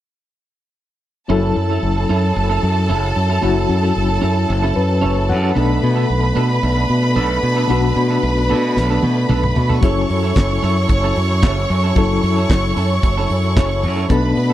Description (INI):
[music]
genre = disco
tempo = 112 BPM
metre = 4/4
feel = straight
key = F# minor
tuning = A4 = 440 Hz
[part]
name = clear studio violin section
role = second line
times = 1.3-14.5 s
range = A4 to C#6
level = -22 LUFS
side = right 1 dB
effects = none
[part]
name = barky reed electric piano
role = accompaniment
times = 1.3-14.5 s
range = B2 to F#5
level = -22 LUFS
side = left 6 dB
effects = overdrive, fast tremolo
[part]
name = clean electric guitar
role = accompaniment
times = 1.3-14.5 s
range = B3 to A4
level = -25 LUFS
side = right 6 dB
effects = none
[part]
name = tonewheel organ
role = sustained chords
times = 1.3-14.5 s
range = F#3 to A4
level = -24 LUFS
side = right 1 dB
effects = overdrive, chorus vibrato, lush chorus
[part]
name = modern bright fingered electric bass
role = bass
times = 1.3-14.5 s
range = F#1 to B2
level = -18 LUFS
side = equal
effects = none
[part]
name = damped 70s drum kit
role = drums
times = 8.8-14.5 s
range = handclaps, hi-hat, kick drum, snare drum, toms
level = -16 LUFS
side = equal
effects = none
[sound]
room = little or no reverb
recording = dry, close 1970s-style studio recording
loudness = -14 LUFS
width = side -13 dB against mid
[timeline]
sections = 1.3-14.5 A section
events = reed electric piano fill 4.5-5.6, 13.3-14.1; drum fill 8.8-9.8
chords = 1.3 F#m7; 5.6 Bm7; 9.8 F#m7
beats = | 1.30 1.83 2.36 2.89 | 3.43 3.96 4.49 5.03 | 5.56 6.09 6.63 7.16 | 7.69 8.23 8.76 9.29 | 9.83 10.36 10.89 11.43 | 11.96 12.50 13.03 13.57 | 14.10